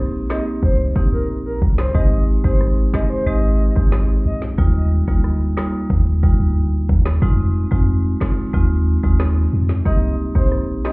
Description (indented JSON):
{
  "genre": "dancehall",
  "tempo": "91 BPM",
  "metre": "4/4",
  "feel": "straight",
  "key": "C minor",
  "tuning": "A4 = 445 Hz",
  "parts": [
    { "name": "marimba with hard mallets", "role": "accompaniment", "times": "0.0-10.9 s", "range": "G3 to G4", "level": "-24 LUFS", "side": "right 1 dB", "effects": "none" },
    { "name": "punchy sub bass", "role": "bass", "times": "0.0-10.8 s", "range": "Ab1 to F2", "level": "-17 LUFS", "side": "equal", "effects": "none" },
    { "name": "breathy flute-like synth lead", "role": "melody", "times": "0.3-4.4, 9.9-10.9 s", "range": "Bb4 to Eb5", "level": "-27 LUFS", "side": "equal", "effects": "chorus, tape echo" },
    { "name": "afro-pop drum kit", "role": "drums", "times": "0.3-10.9 s", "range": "kick drum, rim click, snare drum", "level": "-18 LUFS", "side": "equal", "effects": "none" }
  ],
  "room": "digital ambience",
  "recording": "heard muffled through a wall, club reverb, EQ",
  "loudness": "-15 LUFS",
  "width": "side -27 dB against mid",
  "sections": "0.0-10.9 A section",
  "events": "none",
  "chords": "0.0 Cm7; 1.9 Abmaj7; 4.6 Ebadd9; 7.2 Fm7; 9.9 Cm7"
}